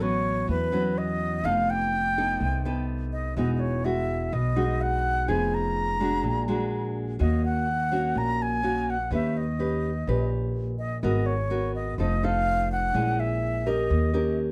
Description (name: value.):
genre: bossa nova.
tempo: 125 BPM.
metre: 4/4.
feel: straight.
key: unclear.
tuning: A4 = 440 Hz.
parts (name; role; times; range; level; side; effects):
breathy bright concert flute; melody; 0.0-14.4 s; B4 to A#5; -31 LUFS; equal; none.
nylon-string guitar; accompaniment; 0.0-14.5 s; A2 to B4; -31 LUFS; equal; none.
upright bass; bass; 0.0-14.5 s; E1 to E2; -30 LUFS; equal; none.
room: light reverb.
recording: band playing live in one room.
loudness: -26 LUFS.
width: mono.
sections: 0.0-14.5 A section.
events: none.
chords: 0.0 A69; 1.4 F7#11; 3.4 Emaj9; 5.3 Fm7b5; 6.2 A#7b13; 7.2 D#m7; 9.1 D#7b13; 11.0 G#m9; 12.0 F7; 12.9 A#m7b5; 13.9 D#7.